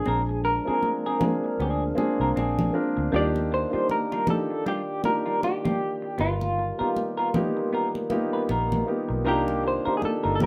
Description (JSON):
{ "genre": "lush 1970s-style soul", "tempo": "78 BPM", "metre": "4/4", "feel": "swing 58% on 16ths", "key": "Bb major", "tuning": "A4 = 440 Hz", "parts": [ { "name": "electric guitar through a small old amp", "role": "melody", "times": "0.0-10.5 s", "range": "F4 to D5", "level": "-30 LUFS", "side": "equal", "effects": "tremolo" }, { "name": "dark grand piano", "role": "accompaniment", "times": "0.0-10.5 s", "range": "Bb3 to Bb4", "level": "-30 LUFS", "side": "equal", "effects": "none" }, { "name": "dark French horn section", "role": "sustained chords", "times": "0.0-10.5 s", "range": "C3 to D5", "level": "-36 LUFS", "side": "equal", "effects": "none" }, { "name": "semi-hollow electric guitar", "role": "riff", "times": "0.1-10.4 s", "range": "G3 to B4", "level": "-33 LUFS", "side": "equal", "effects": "none" }, { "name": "vintage muted fingered electric bass", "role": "bass", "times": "0.1-10.5 s", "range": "G1 to Eb2", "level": "-31 LUFS", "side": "equal", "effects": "none" }, { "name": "congas", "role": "percussion", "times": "0.1-10.5 s", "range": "none", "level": "-32 LUFS", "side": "equal", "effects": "none" } ], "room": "wet studio reverb, RT60 0.6 s", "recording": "rough home demo mix", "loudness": "-25 LUFS", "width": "mono", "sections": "0.0-10.5 A section", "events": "none", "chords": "0.1 Bb9; 3.1 Ebmaj9; 6.2 G7alt; 9.3 Cm11" }